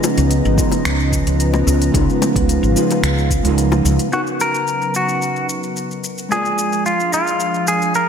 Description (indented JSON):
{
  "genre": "sunset chillout",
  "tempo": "110 BPM",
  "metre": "4/4",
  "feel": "straight",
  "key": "unclear",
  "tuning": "A4 = 440 Hz",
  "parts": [
    { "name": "hollow-body jazz guitar", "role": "accompaniment", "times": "0.0-8.1 s", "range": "G#3 to B4", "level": "-22 LUFS", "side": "moving between left 4 dB and right 6 dB", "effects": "auto-pan, digital delay, slapback echo" },
    { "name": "lush unison pad", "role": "sustained chords", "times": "0.0-8.1 s", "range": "C#3 to A#5", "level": "-21 LUFS", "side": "equal", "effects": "chorus" },
    { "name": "deep house drum kit", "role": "drums", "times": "0.0-8.1 s", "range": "finger snaps, hi-hat, shaker", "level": "-26 LUFS", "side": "left 2 dB", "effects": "studio reverb" },
    { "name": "bongos", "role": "percussion", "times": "0.0-3.8 s", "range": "none", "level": "-25 LUFS", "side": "left 6 dB", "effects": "none" },
    { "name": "woody fretless electric bass", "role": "bass", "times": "0.2-4.0 s", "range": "G#1 to C#2", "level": "-17 LUFS", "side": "equal", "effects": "analog chorus" },
    { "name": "electronic kick drum", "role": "drums", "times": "0.6-3.4 s", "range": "none", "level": "-20 LUFS", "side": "equal", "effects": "studio reverb" },
    { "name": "clean electric guitar", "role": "melody", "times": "4.1-8.1 s", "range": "E#4 to A#4", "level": "-18 LUFS", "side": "left 1 dB", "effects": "digital delay, slapback echo" }
  ],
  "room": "moderate lush hall reverb, RT60 1.7 s, digital ambience",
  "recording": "big arena sound",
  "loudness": "-15 LUFS",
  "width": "side -7 dB against mid",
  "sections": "0.0-4.1 A section; 4.1-8.1 B section",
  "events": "none",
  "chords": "0.0 C#13; 4.1 Bmaj9; 6.3 A#7",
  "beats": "0.30 0.85 1.40 | 1.94 2.49 3.03 3.58 | 4.12 4.67 5.21 5.76 | 6.30 6.85 7.40 7.94"
}